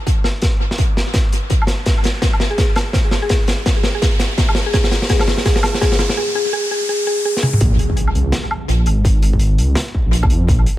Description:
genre	half-time drum and bass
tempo	167 BPM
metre	4/4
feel	swing 60% on 16ths, half-time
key	Bb minor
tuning	A4 = 437 Hz
part	riser and impact	sound effects	0.0-9.0 s	none	-25 LUFS	equal	none
part	crunchy breakbeat drum kit	drums	0.1-10.8 s	hi-hat, snare drum, toms, woodblock	-20 LUFS	equal	tape echo
part	electronic kick drum	drums	0.1-10.6 s	none	-16 LUFS	equal	distortion
part	mallet-like synth pluck	melody	2.5-7.5 s	Ab4	-22 LUFS	left 1 dB	chorus, analog delay
part	dark detuned saw bass	bass	7.6-10.7 s	Ab1 to F2	-15 LUFS	equal	none
room	moderate spring reverb, RT60 1.3 s, small room ambience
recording	echo-heavy mix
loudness	-14 LUFS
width	side -15 dB against mid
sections	0.0-7.6 A section; 7.6-10.8 B section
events	build-up 0.0-7.6; drum fill 0.0-6.2, 7.3; riser 0.0-7.6; break 6.2-7.6; drop 7.6-10.8; impact 7.6-9.1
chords	0.0 N.C.; 7.6 Bbm

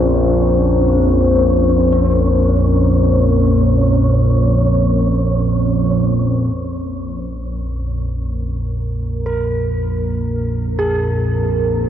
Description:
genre	dark ambient drone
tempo	free time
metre	none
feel	none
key	Bb minor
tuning	A4 = 438 Hz
part	deep dark ambient pad	sustained chords	0.0-11.9 s	Bb4 to C5	-20 LUFS	left 2 dB	chorus, built-in reverb
part	dark detuned synth bell	arpeggios	0.0-11.9 s	C4 to Bb4	-26 LUFS	equal	chorus, phaser, diffuse ambient delay
part	analog drone	drone	0.0-11.9 s	Bb1 to F2	-16 LUFS	equal	chorus
part	wind-like tuned noise texture	texture	0.0-6.6 s	Db4	-22 LUFS	right 2 dB	built-in reverb
room	wet huge ambient reverb, RT60 8.2 s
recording	worn, warbling old tape, cassette tape, warbly pitch drift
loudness	-14 LUFS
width	side -10 dB against mid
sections	0.0-6.5 A section; 6.5-11.9 B section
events	filter sweep on synth drone 6.5-11.9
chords	0.0 Bbm; 6.5 Bb5

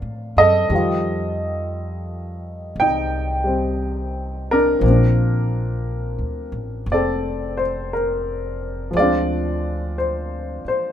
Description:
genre	jazz ballad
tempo	58 BPM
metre	4/4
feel	swing 66% on 8ths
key	Bb major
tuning	A4 = 441 Hz
part	warm baby grand piano	accompaniment	0.0-10.9 s	D3 to G5	-20 LUFS	equal	none
part	upright bass	bass	0.0-10.7 s	F1 to A2	-24 LUFS	equal	none
room	little or no reverb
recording	minimal, uncompressed stereo recording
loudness	-18 LUFS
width	side -10 dB against mid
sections	0.0-10.9 A section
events	none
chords	0.0 Bbmaj9 (rootless); 0.7 F9; 4.8 Bbmaj7; 8.9 Dm7b5

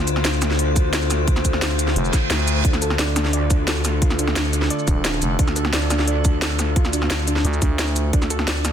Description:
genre	dark technical drum and bass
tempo	175 BPM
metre	4/4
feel	straight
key	D minor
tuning	A4 = 440 Hz
part	metallic inharmonic drone	sustained chords	0.0-8.7 s	D3 to C5	-25 LUFS	left 4 dB	chorus, built-in reverb, vintage 12-bit sampler grit, sidechain pumping
part	growl bass	bass	0.0-8.7 s	D2	-22 LUFS	equal	chorus, overdrive, sidechain pumping
part	drum and bass drum kit	drums	0.1-8.7 s	hi-hat, shaker, snare drum	-23 LUFS	equal	none
part	electronic kick drum	drums	0.8-8.2 s	none	-19 LUFS	equal	none
part	growling FM bass	bass	2.0-2.6, 4.9-5.4, 7.4-8.1 s	Eb1 to D2	-22 LUFS	equal	none
part	reverse cymbal	sound effects	2.1-2.6 s	none	-27 LUFS	right 4 dB	none
part	soft round pluck	arpeggios	2.6-8.7 s	D4 to D5	-27 LUFS	right 3 dB	chorus, sidechain pumping, tape echo
room	light reverb, digital ambience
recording	dense, heavily limited modern master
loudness	-17 LUFS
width	side -9 dB against mid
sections	0.0-8.7 A section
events	reverse cymbal 2.1-2.6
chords	0.0 Dm

